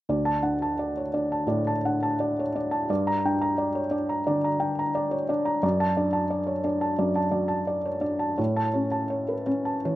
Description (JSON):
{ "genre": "neoclassical minimalist piano", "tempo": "87 BPM", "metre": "4/4", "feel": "uneven beats, rubato", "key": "D major", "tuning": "A4 = 441 Hz", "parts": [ { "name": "felt-muted upright piano", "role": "solo", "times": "0.1-10.0 s", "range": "D2 to Bb5", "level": "-23 LUFS", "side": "equal", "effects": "none" } ], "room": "light reverb, small room reverb", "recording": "rough home demo mix", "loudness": "-23 LUFS", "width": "side -15 dB against mid", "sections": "0.1-10.0 A section", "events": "none", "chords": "0.1 D; 2.9 Gm; 5.6 D/F#; 8.4 A" }